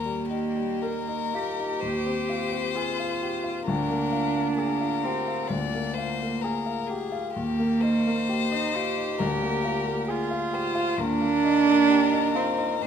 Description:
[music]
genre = classical, slow romantic movement for piano trio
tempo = 56-68 BPM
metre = 4/4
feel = rubato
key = Eb major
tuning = A4 = 435 Hz
[part]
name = warm violin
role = melody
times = 0.0-12.9 s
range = G4 to D5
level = -30 LUFS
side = left 10 dB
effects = none
[part]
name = warm cello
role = second line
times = 0.0-12.9 s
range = Bb3 to G4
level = -26 LUFS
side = right 5 dB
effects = none
[part]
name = warm grand piano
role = accompaniment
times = 0.0-12.9 s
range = D2 to Bb4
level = -29 LUFS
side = left 2 dB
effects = none
[sound]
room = wet recital hall reverb, RT60 1.5 s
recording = none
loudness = -23 LUFS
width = side -8 dB against mid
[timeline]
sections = 0.0-12.9 A section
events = none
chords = 0.0 Eb; 1.8 Fm7/Eb; 3.7 Bb7/D; 7.4 Eb; 9.2 Bb7/D; 11.0 Eb

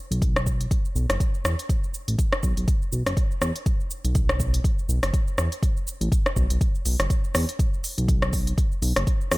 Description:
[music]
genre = afro house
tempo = 122 BPM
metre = 4/4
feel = swing 57% on 16ths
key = unclear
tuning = A4 = 440 Hz
[part]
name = smooth synth bass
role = bass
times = 0.1-9.4 s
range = F#1 to E2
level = -24 LUFS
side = equal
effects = sidechain pumping
[part]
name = deep house drum kit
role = drums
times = 0.1-9.4 s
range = hi-hat, rim click, shaker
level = -28 LUFS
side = equal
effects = studio reverb
[part]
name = electronic kick drum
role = drums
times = 0.2-9.2 s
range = none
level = -23 LUFS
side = equal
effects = studio reverb
[sound]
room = digital ambience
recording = none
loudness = -21 LUFS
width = side -21 dB against mid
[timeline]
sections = 0.0-9.4 A section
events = none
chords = none

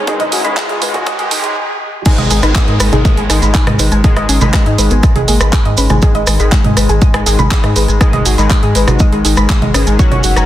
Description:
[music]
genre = melodic techno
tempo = 121 BPM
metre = 4/4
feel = straight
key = G# minor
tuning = A4 = 440 Hz
[part]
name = rich studio string section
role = sustained chords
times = 0.0-1.5 s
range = G#2 to C#4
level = -27 LUFS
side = right 2 dB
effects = none
[part]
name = woody wave-folded pluck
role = arpeggios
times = 0.0-10.4 s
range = D#4 to A#6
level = -20 LUFS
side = equal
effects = lush chorus, sidechain pumping, digital delay
[part]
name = sync-sweep polysynth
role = stabs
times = 0.0-10.5 s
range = G#2 to F#4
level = -19 LUFS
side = left 2 dB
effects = chorus, sidechain pumping, digital delay
[part]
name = riser and downlifter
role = sound effects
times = 0.0-6.0 s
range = none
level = -23 LUFS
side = right 1 dB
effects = none
[part]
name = electronic kick drum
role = drums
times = 0.1-10.1 s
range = none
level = -11 LUFS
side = equal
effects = high-pass filter on kick, high-pass filter on room
[part]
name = house drum kit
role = drums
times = 0.1-10.5 s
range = congas, crash cymbal, handclaps, hi-hat, rim click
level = -17 LUFS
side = right 2 dB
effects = soft clipping on snare
[part]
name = soft octave-layered synth lead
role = melody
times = 0.2-10.4 s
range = F#3 to G#4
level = -20 LUFS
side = left 1 dB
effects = chorus, sidechain pumping, dub echo
[part]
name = analog drone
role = drone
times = 2.9-10.5 s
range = G#2 to D#3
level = -26 LUFS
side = left 1 dB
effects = none
[part]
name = maracas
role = percussion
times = 2.1-10.5 s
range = none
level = -21 LUFS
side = right 4 dB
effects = none
[part]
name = round analog bass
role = bass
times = 2.2-10.5 s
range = F#1 to G#2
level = -14 LUFS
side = equal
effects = sidechain pumping
[sound]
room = light reverb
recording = dense, heavily limited modern master, high-pass filter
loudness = -9 LUFS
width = side -13 dB against mid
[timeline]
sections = 0.0-2.1 A section; 2.1-10.5 B section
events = build-up 0.0-2.1; riser 0.0-1.6; stop 1.6-2.1; drop 2.1-10.5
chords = 0.0 G#m

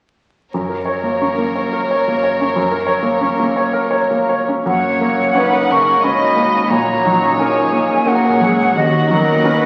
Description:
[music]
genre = classical, romantic movement for piano and orchestra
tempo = 88 BPM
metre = 3/4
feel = uneven beats, rubato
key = F# major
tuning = A4 = 439 Hz
[part]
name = clear baby grand piano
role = melody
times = 0.5-9.7 s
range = D#2 to C#5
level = -20 LUFS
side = equal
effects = none
[part]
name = warm symphonic violin section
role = second line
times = 0.5-9.7 s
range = F#4 to D#5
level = -23 LUFS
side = equal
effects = none
[part]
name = warm symphonic cello section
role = bass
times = 0.5-9.7 s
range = D#2 to A#2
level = -27 LUFS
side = equal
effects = none
[part]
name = clear studio violin section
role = melody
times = 4.7-9.7 s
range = C#5 to F#5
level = -29 LUFS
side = equal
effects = none
[part]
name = silver concert flute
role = second line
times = 4.7-9.7 s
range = D#5 to C#6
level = -18 LUFS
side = equal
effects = none
[part]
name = warm chamber viola section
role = accompaniment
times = 4.7-9.7 s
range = G#3 to C#5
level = -25 LUFS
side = equal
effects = none
[part]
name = dark French horn section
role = sustained chords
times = 4.7-9.7 s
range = F#3 to C#4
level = -27 LUFS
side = equal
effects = none
[part]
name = dark symphonic double bass section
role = bass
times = 4.7-9.7 s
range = F#1 to D#2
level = -40 LUFS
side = equal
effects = none
[sound]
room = wet scoring stage reverb, RT60 1.7 s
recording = very old 78 rpm record, vinyl crackle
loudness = -16 LUFS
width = mono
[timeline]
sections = 0.5-4.7 A section; 4.7-9.7 B section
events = none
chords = 0.5 F#; 6.7 F#/A#; 8.8 D#m7

